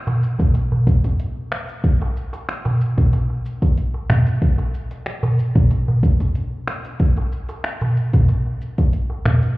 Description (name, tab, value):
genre	downtempo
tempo	93 BPM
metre	4/4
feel	straight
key	none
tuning	none
part	deep house drum kit	drums	0.1-9.6 s	finger snaps, hi-hat, shaker, toms	-24 LUFS	equal	studio reverb
part	darbuka	percussion	0.1-9.5 s	none	-20 LUFS	equal	none
part	electronic kick drum	drums	0.4-8.9 s	none	-17 LUFS	equal	studio reverb
room	moderate lush hall reverb, RT60 2.9 s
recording	heard muffled through a wall, club reverb, EQ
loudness	-17 LUFS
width	side -20 dB against mid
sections	0.0-9.6 A section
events	none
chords	none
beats	0.55 1.19 | 1.84 2.48 3.13 3.77 | 4.42 5.07 5.71 6.36 | 7.00 7.65 8.29 8.94